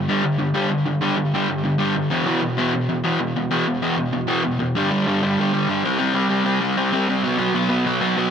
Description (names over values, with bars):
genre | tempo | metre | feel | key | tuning
punk | 193 BPM | 4/4 | straight | unclear | A4 = 440 Hz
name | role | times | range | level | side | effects
overdriven semi-hollow guitar | solo | 0.0-8.3 s | E2 to C4 | -18 LUFS | equal | digital delay
room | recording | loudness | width
moderate studio reverb, RT60 0.8 s | none | -18 LUFS | side -7 dB against mid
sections
0.0-4.8 A section; 4.8-8.3 B section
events
none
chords
0.0 G5; 2.1 E5; 4.8 G5; 5.8 C5; 7.2 B5